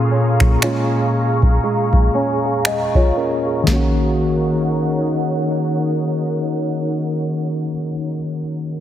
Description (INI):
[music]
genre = contemporary R&B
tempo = 59 BPM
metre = 4/4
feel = swing 58% on 16ths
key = Eb minor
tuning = A4 = 440 Hz
[part]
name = mellow tine electric piano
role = accompaniment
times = 0.0-8.8 s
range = Bb2 to Ab5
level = -19 LUFS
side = left 1 dB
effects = medium stereo tremolo, low-pass filter
[part]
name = ethereal airy pad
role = sustained chords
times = 0.0-7.7 s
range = Eb4 to Db6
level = -24 LUFS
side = left 1 dB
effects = ensemble chorus, built-in reverb, low-pass filter
[part]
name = nylon-string guitar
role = arpeggios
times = 0.0-7.8 s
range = Bb2 to Gb4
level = -24 LUFS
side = right 3 dB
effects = low-pass filter, digital delay
[part]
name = booming analog drum machine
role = drums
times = 0.4-3.9 s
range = finger snaps, kick drum, snare drum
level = -17 LUFS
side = equal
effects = none
[sound]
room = light reverb, digital ambience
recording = heavily compressed radio sound, multiband compression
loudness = -16 LUFS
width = side -11 dB against mid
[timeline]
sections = 0.0-3.7 A section; 3.7-7.7 B section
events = filter sweep 0.0-3.7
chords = 0.0 Bbm7; 3.7 Ebm7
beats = 0.62 1.64 2.65 | 3.67 4.69 5.70 6.72